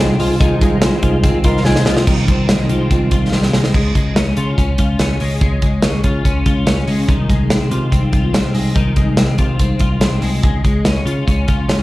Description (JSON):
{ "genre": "jangly indie pop", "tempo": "144 BPM", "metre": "4/4", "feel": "straight", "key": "Db major", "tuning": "A4 = 439 Hz", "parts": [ { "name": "combo organ", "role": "accompaniment", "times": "0.0-2.1 s", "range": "Eb4 to C6", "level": "-20 LUFS", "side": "left 1 dB", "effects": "slapback echo" }, { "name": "fingerpicked steel-string acoustic guitar", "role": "accompaniment", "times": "0.0-4.3 s", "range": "C3 to F4", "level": "-22 LUFS", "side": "right 4 dB", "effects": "none" }, { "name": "twelve-string electric guitar", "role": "arpeggios", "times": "0.0-11.8 s", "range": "Eb3 to F4", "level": "-21 LUFS", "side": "left 3 dB", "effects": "ensemble chorus, slapback echo" }, { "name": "vintage muted picked electric bass", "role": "bass", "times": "0.0-11.8 s", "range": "C2 to Db3", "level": "-17 LUFS", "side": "equal", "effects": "none" }, { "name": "modern studio drum kit", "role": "drums", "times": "0.2-11.8 s", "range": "crash cymbal, hi-hat, kick drum, snare drum", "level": "-16 LUFS", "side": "equal", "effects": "none" } ], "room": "studio reverb", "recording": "live gig heard through the venue's PA, club reverb", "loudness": "-13 LUFS", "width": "side -18 dB against mid", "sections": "0.0-2.1 A section; 2.1-3.7 B section; 3.7-11.8 C section", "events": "transistor combo organ fill 1.2-2.1; drum fill 1.7-2.1, 3.3-3.7", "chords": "0.0 Fm7/C; 3.7 Db; 7.1 Fm7/C; 10.4 Db" }